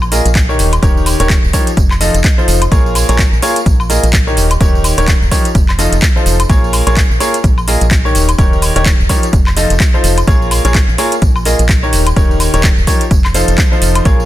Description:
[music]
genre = piano house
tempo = 127 BPM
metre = 4/4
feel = swing 58% on 16ths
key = Bb dorian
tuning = A4 = 437 Hz
[part]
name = organ-like FM bass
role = bass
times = 0.0-14.3 s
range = Eb1 to Bb1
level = -14 LUFS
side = equal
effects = sidechain pumping
[part]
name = house drum kit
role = drums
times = 0.0-14.3 s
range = handclaps, hi-hat, tambourine, woodblock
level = -17 LUFS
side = equal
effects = overdrive
[part]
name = bright upright piano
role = riff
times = 0.1-14.3 s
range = Eb3 to Eb5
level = -16 LUFS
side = equal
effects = sidechain pumping, tape echo
[part]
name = electronic kick drum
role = drums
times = 0.4-14.2 s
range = none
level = -12 LUFS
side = equal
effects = overdrive
[sound]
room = little or no reverb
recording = dense, heavily limited modern master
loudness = -9 LUFS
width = side -14 dB against mid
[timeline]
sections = 0.0-14.3 A section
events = none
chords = 0.0 Bbm7; 0.6 Eb7; 1.8 F7; 2.7 Bbm7; 4.4 Eb7; 5.5 F7; 6.5 Bbm7; 8.1 Eb7; 9.3 F7; 10.3 Bbm7; 11.9 Eb7; 13.1 F7

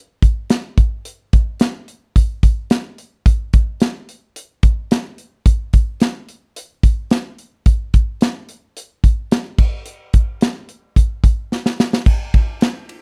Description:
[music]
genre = indie pop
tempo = 109 BPM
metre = 4/4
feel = straight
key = none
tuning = none
[part]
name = modern studio drum kit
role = drums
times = 0.2-13.0 s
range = crash cymbal, hi-hat, kick drum, ride cymbal, snare drum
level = -16 LUFS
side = equal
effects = none
[sound]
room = light reverb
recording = dry, close 1970s-style studio recording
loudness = -18 LUFS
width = mono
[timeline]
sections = 0.0-12.1 A section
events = drum fill 11.5-12.1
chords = none

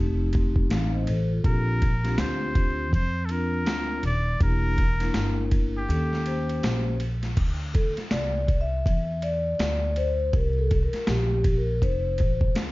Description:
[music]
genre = hip hop, jazz-hop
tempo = 81 BPM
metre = 4/4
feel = swing 61% on 16ths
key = D minor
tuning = A4 = 440 Hz
[part]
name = vibraphone with soft mallets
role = accompaniment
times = 0.0-12.5 s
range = A3 to F5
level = -29 LUFS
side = left 2 dB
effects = none
[part]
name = upright bass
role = bass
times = 0.0-12.7 s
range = Eb1 to F2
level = -26 LUFS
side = equal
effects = none
[part]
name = boom bap sampler-style drum kit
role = drums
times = 0.3-12.7 s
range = crash cymbal, hi-hat, kick drum, ride cymbal, snare drum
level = -25 LUFS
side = equal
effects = none
[part]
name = trumpet with straight mute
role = melody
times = 1.5-7.0 s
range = G4 to D5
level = -31 LUFS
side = equal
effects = none
[sound]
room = little or no reverb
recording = dark, warm production, vinyl crackle, nothing above 7.5 kHz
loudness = -22 LUFS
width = side -20 dB against mid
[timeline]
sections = 0.0-7.4 A section; 7.4-12.7 B section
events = break 5.9-7.4; vibraphone solo 7.4-12.7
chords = 0.0 F9; 1.4 Bb6; 4.4 Em7b5; 5.9 Eb7#11; 7.4 Dsus2; 10.3 Gmadd11; 11.8 F

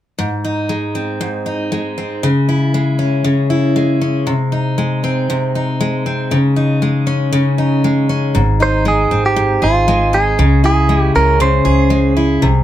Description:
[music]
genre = pop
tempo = 118 BPM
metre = 4/4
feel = straight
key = Ab major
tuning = A4 = 440 Hz
[part]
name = picked steel-string acoustic guitar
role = accompaniment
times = 0.2-12.6 s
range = Ab2 to Ab4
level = -14 LUFS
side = left 1 dB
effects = none
[part]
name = upright bass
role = bass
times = 8.4-12.6 s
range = Ab1 to Db2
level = -16 LUFS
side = right 1 dB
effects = none
[part]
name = direct-recorded clean electric guitar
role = melody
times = 8.6-12.1 s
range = F4 to C5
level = -15 LUFS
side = right 2 dB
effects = none
[sound]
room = light reverb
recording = none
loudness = -13 LUFS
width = side -12 dB against mid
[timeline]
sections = 0.2-8.3 A section; 8.3-12.6 B section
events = none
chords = 0.2 Ab; 2.2 Dbm; 4.3 Ab/C; 6.3 Dbsus2; 8.3 Ab; 10.4 Dbm

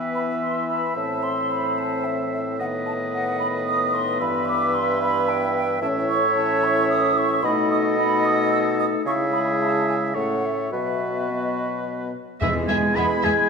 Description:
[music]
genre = quick classical-period movement for symphony orchestra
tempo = 111 BPM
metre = 3/4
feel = straight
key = E minor, E major from 5.8 s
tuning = A4 = 440 Hz
[part]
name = clear clarinet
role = second line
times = 0.0-13.5 s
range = E4 to C#5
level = -29 LUFS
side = left 1 dB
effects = none
[part]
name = warm oboe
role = second line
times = 0.0-13.5 s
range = B4 to B5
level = -27 LUFS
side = equal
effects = none
[part]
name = warm bassoon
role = accompaniment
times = 0.0-13.5 s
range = G2 to G#3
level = -26 LUFS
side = right 2 dB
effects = none
[part]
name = dark French horn section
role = sustained chords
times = 0.0-13.5 s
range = D#3 to E4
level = -28 LUFS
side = left 5 dB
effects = none
[part]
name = mellow hollow small flute group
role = second line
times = 0.1-13.3 s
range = D#5 to E6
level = -26 LUFS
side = right 2 dB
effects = none
[part]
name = muted chamber violin section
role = melody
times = 12.4-13.3 s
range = E5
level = -33 LUFS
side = left 5 dB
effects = none
[part]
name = muted chamber violin section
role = second line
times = 12.4-13.3 s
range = G#4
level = -34 LUFS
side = left 2 dB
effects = none
[part]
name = muted chamber viola section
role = accompaniment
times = 12.4-13.3 s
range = B3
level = -34 LUFS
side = right 3 dB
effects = none
[part]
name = muted chamber cello section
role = bass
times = 12.4-13.3 s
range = E3 to B3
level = -27 LUFS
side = right 2 dB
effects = none
[part]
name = muted chamber double bass section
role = bass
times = 12.4-13.3 s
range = E2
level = -33 LUFS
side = right 2 dB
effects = none
[part]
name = timpani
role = percussion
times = 12.4-13.2 s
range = E2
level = -29 LUFS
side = left 1 dB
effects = none
[sound]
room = wet scoring stage reverb, RT60 2.0 s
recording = none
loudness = -20 LUFS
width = side -5 dB against mid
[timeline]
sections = 0.0-12.4 A section; 12.4-13.5 B section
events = none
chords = 0.0 E5; 1.0 Am; 2.6 B7/A; 4.2 Em/G; 5.8 A; 7.4 B7; 9.1 C#m; 10.2 A; 10.7 B; 12.4 E

